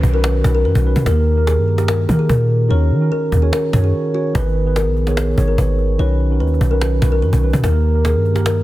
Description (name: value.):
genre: hip hop, trap.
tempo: 146 BPM.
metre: 4/4.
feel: half-time.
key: unclear.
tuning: A4 = 439 Hz.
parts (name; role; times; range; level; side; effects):
kalimba; melody; 0.0-8.6 s; F#4 to C#5; -22 LUFS; left 2 dB; low-pass filter, digital delay.
mellow tine electric piano; accompaniment; 0.0-8.6 s; D#3 to C#5; -21 LUFS; right 4 dB; lush chorus, low-pass filter.
warm 808-style bass; bass; 0.0-8.6 s; G#1 to D#3; -15 LUFS; equal; none.
cajon; drums; 0.0-8.6 s; none; -22 LUFS; equal; none.
downlifter; sound effects; 0.0-1.1 s; none; -41 LUFS; equal; none.
room: small room ambience.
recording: dense, heavily limited modern master.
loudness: -14 LUFS.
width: side -16 dB against mid.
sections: 0.0-8.6 A section.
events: break 0.0-4.3.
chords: 0.0 Badd9; 1.1 D#; 2.7 D#m7; 4.3 G#m; 6.0 Badd9; 7.6 D#.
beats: 0.24 0.65 | 1.06 1.47 1.88 2.29 | 2.71 3.12 3.53 3.94 | 4.35 4.76 5.17 5.58 | 5.99 6.40 6.82 7.23 | 7.64 8.05 8.46.